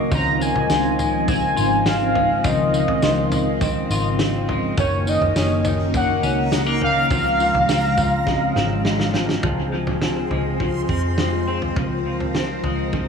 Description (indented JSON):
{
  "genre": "dream pop",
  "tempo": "103 BPM",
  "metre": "4/4",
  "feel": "straight",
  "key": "Db major",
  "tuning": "A4 = 439 Hz",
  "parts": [
    { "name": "ensemble organ-string", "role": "sustained chords", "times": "0.0-13.1 s", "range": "C3 to C5", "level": "-24 LUFS", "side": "equal", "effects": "ensemble chorus" },
    { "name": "semi-hollow electric guitar", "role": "arpeggios", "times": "0.0-13.1 s", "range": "Eb3 to Gb4", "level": "-26 LUFS", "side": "left 3 dB", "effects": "analog chorus, analog delay" },
    { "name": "vintage muted fingered electric bass", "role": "bass", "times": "0.0-13.1 s", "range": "Gb1 to F2", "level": "-25 LUFS", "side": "equal", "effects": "none" },
    { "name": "warm velvety synth lead", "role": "melody", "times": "0.1-9.1 s", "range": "Db5 to Bb5", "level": "-22 LUFS", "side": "equal", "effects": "chorus, analog delay" },
    { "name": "loose indie drum kit", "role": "drums", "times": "0.1-13.1 s", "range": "kick drum, snare drum, tambourine, toms", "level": "-25 LUFS", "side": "equal", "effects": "analog delay" },
    { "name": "backwards swelling texture", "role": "texture", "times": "5.8-11.2 s", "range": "Bb5 to C6", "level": "-34 LUFS", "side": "right 1 dB", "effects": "built-in reverb, analog delay" }
  ],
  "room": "moderate spring reverb, RT60 2.4 s",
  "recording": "echo-heavy mix",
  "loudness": "-17 LUFS",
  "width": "side -6 dB against mid",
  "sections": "0.0-9.4 A section; 9.4-13.1 B section",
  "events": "drum fill 8.3-9.4",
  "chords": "0.1 Dbmaj9; 4.8 Gb6; 7.1 Dbmaj7"
}